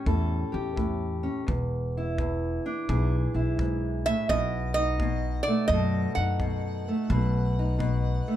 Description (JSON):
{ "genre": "acoustic country blues, solo or duo", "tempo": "85 BPM", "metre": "4/4", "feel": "swing 66% on 8ths", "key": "unclear", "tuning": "A4 = 439 Hz", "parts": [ { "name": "fingerpicked steel-string acoustic guitar", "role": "accompaniment", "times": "0.0-8.4 s", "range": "E2 to A4", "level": "-29 LUFS", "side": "equal", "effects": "none" }, { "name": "upright bass", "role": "bass", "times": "0.1-8.2 s", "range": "E1 to F#2", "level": "-28 LUFS", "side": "equal", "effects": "none" }, { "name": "kick drum", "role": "drums", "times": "0.1-8.0 s", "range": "none", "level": "-33 LUFS", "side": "equal", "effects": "none" }, { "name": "metal-body resonator slide guitar", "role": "melody", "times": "4.1-8.4 s", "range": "D5 to F#5", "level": "-28 LUFS", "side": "right 3 dB", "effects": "plate reverb" } ], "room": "light reverb", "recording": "dark, warm production", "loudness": "-25 LUFS", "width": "side -12 dB against mid", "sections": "0.0-8.4 A section", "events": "none", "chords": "0.0 A7; 1.5 E7; 4.3 B7" }